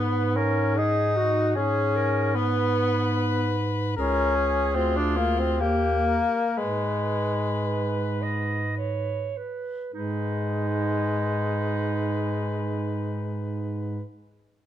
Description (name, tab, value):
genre	classical, lyrical piece for single-reed quartet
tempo	49-77 BPM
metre	3/4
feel	rubato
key	G# minor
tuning	A4 = 440 Hz
part	clear soprano saxophone	melody	0.0-14.0 s	F4 to B4	-32 LUFS	left 4 dB	none
part	bright clarinet	second line	0.0-14.0 s	D#4 to D#5	-32 LUFS	right 6 dB	none
part	mellow tenor saxophone	accompaniment	0.0-14.0 s	G#3 to D#4	-26 LUFS	left 3 dB	none
part	mellow bass clarinet	bass	0.0-14.0 s	C#2 to G#2	-27 LUFS	right 2 dB	none
room	moderate stone room reverb, RT60 1.4 s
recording	dark, warm production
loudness	-23 LUFS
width	side -11 dB against mid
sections	0.0-9.9 A section; 9.9-13.3 B section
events	slowing down 2.7-9.9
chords	0.0 G#m; 4.0 C#5; 4.7 Dm7b5; 5.6 D#; 6.6 G#m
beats	0.77 | 1.56 2.35 3.15 | 3.96 4.75 5.60 | 6.58 7.66 8.77 | 9.94 11.03 12.14